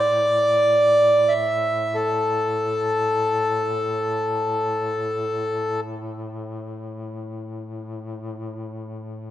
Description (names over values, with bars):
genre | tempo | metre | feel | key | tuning
caucasian folk, Caucasian lament | free time | none | none | unclear | A4 = 440 Hz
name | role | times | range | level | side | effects
accordion | melody | 0.0-5.8 s | A4 to E5 | -19 LUFS | equal | slapback echo
warm duduk | drone | 0.0-9.3 s | A2 | -32 LUFS | left 1 dB | stereo widening
room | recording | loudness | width
wet lush hall reverb, RT60 2.4 s | rough home demo mix | -19 LUFS | side -12 dB against mid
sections
0.0-9.3 A section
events
none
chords
none